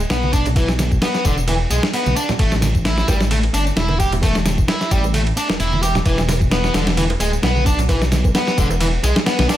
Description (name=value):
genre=breakbeat, breaks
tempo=131 BPM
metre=4/4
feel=swing 55% on 16ths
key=unclear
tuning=A4 = 440 Hz
part: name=dark detuned saw bass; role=bass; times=0.0-9.5 s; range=D1 to B1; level=-20 LUFS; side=equal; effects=none
part: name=tambourine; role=drums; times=0.0-9.6 s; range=none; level=-32 LUFS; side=left 3 dB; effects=small room ambience
part: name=fuzz guitar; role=riff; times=0.1-9.6 s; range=D3 to G4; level=-21 LUFS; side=equal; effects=distortion, tube saturation, vintage 12-bit sampler grit, tape echo
part: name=dusty soul sampler-style drum kit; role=drums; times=0.1-9.6 s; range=kick drum, ride cymbal, snare drum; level=-20 LUFS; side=equal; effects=small room ambience
part: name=congas and bongos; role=percussion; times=0.2-9.6 s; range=none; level=-27 LUFS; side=right 4 dB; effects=none
room=digital ambience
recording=none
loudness=-15 LUFS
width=side -13 dB against mid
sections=0.0-9.6 A section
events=none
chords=0.0 E5; 2.4 A5; 6.1 E5